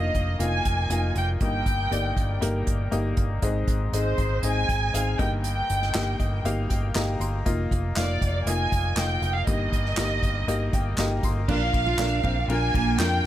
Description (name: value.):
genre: piano-driven pop.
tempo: 119 BPM.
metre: 4/4.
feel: straight.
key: Bb mixolydian.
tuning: A4 = 440 Hz.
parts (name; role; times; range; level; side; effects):
warm studio violin section; melody; 0.0-13.3 s; C5 to Ab5; -29 LUFS; right 1 dB; none.
clear upright piano; accompaniment; 0.0-13.3 s; G2 to C6; -29 LUFS; left 3 dB; none.
vintage muted fingered electric bass; bass; 0.0-13.3 s; F1 to F2; -26 LUFS; equal; none.
unplugged drum kit; drums; 0.1-13.1 s; crash cymbal, handclaps, hi-hat, kick drum, ride cymbal, snare drum; -28 LUFS; equal; none.
fingerpicked steel-string acoustic guitar; riff; 11.5-13.0 s; Bb3 to F4; -30 LUFS; right 6 dB; none.
room: small room ambience.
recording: faint mains hum.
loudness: -22 LUFS.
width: side -12 dB against mid.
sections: 0.0-11.5 A section; 11.5-13.3 B section.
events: upright piano fill 5.9-7.5, 10.5-11.5.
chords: 0.0 Bbsus4/F; 1.4 Eb/G; 3.4 Ab; 5.2 Eb/G; 7.5 Bbsus4/F; 9.5 Eb/G; 11.5 Bb.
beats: 0.40 0.91 | 1.41 1.92 2.42 2.92 | 3.43 3.93 4.43 4.94 | 5.44 5.95 6.45 6.95 | 7.46 7.96 8.47 8.97 | 9.47 9.98 10.48 10.99 | 11.49 11.99 12.50 13.00.